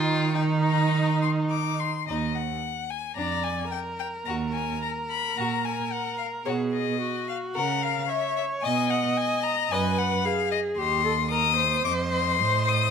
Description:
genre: quick classical-period movement for string quartet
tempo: 110 BPM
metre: 4/4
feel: rubato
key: Eb minor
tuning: A4 = 440 Hz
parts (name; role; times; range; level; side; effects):
- rich violin; melody; 0.0-12.9 s; Db5 to Eb6; -27 LUFS; left 11 dB; none
- clear violin; second line; 0.0-12.9 s; D4 to Eb5; -34 LUFS; left 2 dB; none
- clear viola; accompaniment; 0.0-12.9 s; Eb4 to D#5; -29 LUFS; right 2 dB; none
- clear cello; bass; 0.0-12.9 s; Eb2 to Eb3; -28 LUFS; right 4 dB; none
room: light reverb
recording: close, detailed microphones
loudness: -23 LUFS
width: side -7 dB against mid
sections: 0.0-2.1 A section; 2.1-12.9 B section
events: none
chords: 0.0 Eb; 3.2 Bb/F; 4.3 Ebm; 6.5 B; 7.6 Dbm6; 8.6 B; 10.8 Cm/Eb; 11.9 F7

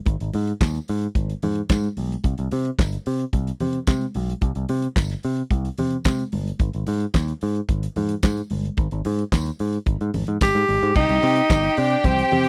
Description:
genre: disco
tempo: 110 BPM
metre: 4/4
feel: straight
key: C minor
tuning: A4 = 440 Hz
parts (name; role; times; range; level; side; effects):
- picked electric bass; bass; 0.1-12.5 s; G1 to C3; -26 LUFS; equal; none
- damped 70s drum kit; drums; 0.1-12.5 s; crash cymbal, handclaps, hi-hat, kick drum, snare drum; -24 LUFS; equal; none
- congas; percussion; 0.1-12.4 s; none; -34 LUFS; equal; none
- tambourine; percussion; 0.6-11.6 s; none; -42 LUFS; equal; none
- breathy tenor saxophone; melody; 10.4-12.5 s; C4 to G4; -22 LUFS; equal; none
- clear studio string section; second line; 11.0-12.5 s; G4 to G5; -26 LUFS; equal; none
room: little or no reverb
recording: dry, close 1970s-style studio recording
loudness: -23 LUFS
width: mono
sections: 0.0-11.0 A section; 11.0-12.5 B section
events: none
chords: 0.0 Ab5; 2.2 C5; 6.6 Ab5; 11.0 Cm

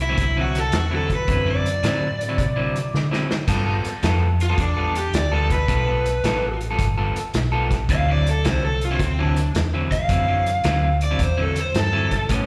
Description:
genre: electric blues shuffle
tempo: 109 BPM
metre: 4/4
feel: swing 67% on 8ths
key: D mixolydian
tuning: A4 = 440 Hz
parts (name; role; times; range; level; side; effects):
- raw garage guitar; melody; 0.0-12.3 s; C4 to F5; -27 LUFS; equal; overdrive, slapback echo
- vintage muted fingered electric bass; bass; 0.0-12.5 s; G1 to D3; -25 LUFS; equal; none
- electric guitar at the edge of break-up; riff; 0.1-12.5 s; A2 to A4; -28 LUFS; equal; slapback echo
- vintage drum kit; drums; 0.2-12.5 s; crash cymbal, hi-hat, kick drum, snare drum; -28 LUFS; equal; none
room: little or no reverb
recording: live gig heard through the venue's PA, recital hall reverb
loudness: -21 LUFS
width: mono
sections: 0.0-12.5 A section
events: overdriven electric guitar solo 0.0-12.5; drum fill 2.9-3.5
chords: 0.0 D9; 3.5 G9; 7.9 D9

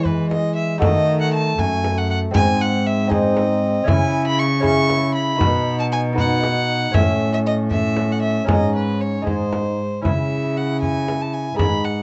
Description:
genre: classical, renaissance-style consort dance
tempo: 78 BPM (dotted quarters)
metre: 6/8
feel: straight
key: C# minor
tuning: A4 = 438 Hz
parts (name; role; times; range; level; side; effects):
- rich violin; melody; 0.0-12.0 s; B4 to C#6; -25 LUFS; equal; none
- bright trombone; accompaniment; 0.0-12.0 s; G#3 to E4; -29 LUFS; equal; none
- lute; accompaniment; 0.0-12.0 s; F#2 to C#5; -28 LUFS; equal; none
- rich cello; bass; 0.0-12.0 s; F#2 to E3; -24 LUFS; equal; none
- frame drum; percussion; 0.1-11.8 s; none; -24 LUFS; equal; none
room: light reverb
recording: dark, warm production, nothing above 8.0 kHz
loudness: -19 LUFS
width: mono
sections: 0.0-10.1 A section; 10.1-12.0 B section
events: none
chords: 0.0 E; 0.8 D#dim; 2.3 G#; 3.9 C#m; 5.4 B; 6.9 A; 8.5 G#sus4; 9.3 G#; 10.1 C#m

